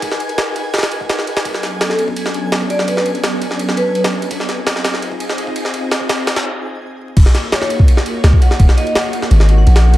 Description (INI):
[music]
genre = drum and bass, jungle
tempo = 168 BPM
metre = 4/4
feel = straight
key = unclear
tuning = A4 = 440 Hz
[part]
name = soft string machine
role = sustained chords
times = 0.0-10.0 s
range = F#3 to Gb5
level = -22 LUFS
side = equal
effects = ensemble chorus
[part]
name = jungle sampler-style drum kit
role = drums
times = 0.0-10.0 s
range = crash cymbal, kick drum, ride cymbal, snare drum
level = -16 LUFS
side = equal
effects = high-pass filter on cymbals, high-pass filter on kick, high-pass filter on snare, high-pass filter on room
[part]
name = twinkling granular texture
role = texture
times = 0.0-6.5 s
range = Ab5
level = -30 LUFS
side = left 1 dB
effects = built-in reverb
[part]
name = vibraphone with medium hard mallets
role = melody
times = 1.8-3.9, 7.5-9.9 s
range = A4 to Gb5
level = -21 LUFS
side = equal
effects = dub echo
[part]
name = long sustained 808-style bass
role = bass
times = 7.2-10.0 s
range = Eb1 to Db2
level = -8 LUFS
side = equal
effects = none
[sound]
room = light reverb, digital ambience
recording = echo-heavy mix, vinyl crackle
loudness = -13 LUFS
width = side -15 dB against mid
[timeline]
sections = 0.0-7.2 A section; 7.2-10.0 B section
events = build-up 0.0-7.2; filter sweep on string machine 0.0-7.2; break 6.5-7.2; drop 7.2-10.0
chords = 0.0 Abm9; 1.5 Bm9; 4.3 Fm7; 7.2 Ebm9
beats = | 0.02 0.38 0.74 1.09 | 1.45 1.81 2.17 2.52 | 2.88 3.24 3.60 3.95 | 4.31 4.67 5.02 5.38 | 5.74 6.09 6.45 6.81 | 7.17 7.52 7.88 8.24 | 8.60 8.95 9.31 9.67